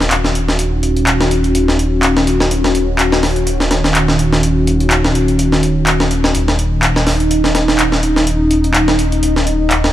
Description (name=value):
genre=breakbeat, breaks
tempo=125 BPM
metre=4/4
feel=swing 56% on 16ths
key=Eb minor pentatonic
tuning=A4 = 438 Hz
part: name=phased analog pad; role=sustained chords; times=0.0-9.9 s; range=Eb3 to Gb4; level=-16 LUFS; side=equal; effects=phaser, chorus, vintage 12-bit sampler grit
part: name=dark detuned saw bass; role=bass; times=0.0-9.9 s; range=Eb1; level=-17 LUFS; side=equal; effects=tube saturation
part: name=breakbeat sampler-style drum kit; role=drums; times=0.0-9.9 s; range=hi-hat, snare drum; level=-18 LUFS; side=equal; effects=high-pass filter on kick, high-pass filter on hats, high-pass filter on snare
part: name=impact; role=sound effects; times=0.0-0.6 s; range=none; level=barely audible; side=none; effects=none
part: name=electronic handclaps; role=drums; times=0.1-9.8 s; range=none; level=-19 LUFS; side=equal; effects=overdrive
room=light reverb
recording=vinyl crackle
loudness=-11 LUFS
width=side -12 dB against mid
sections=0.0-9.9 A section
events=impact 0.0-0.6; filter sweep on analog synth pad 0.0-9.9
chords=0.0 Ebm7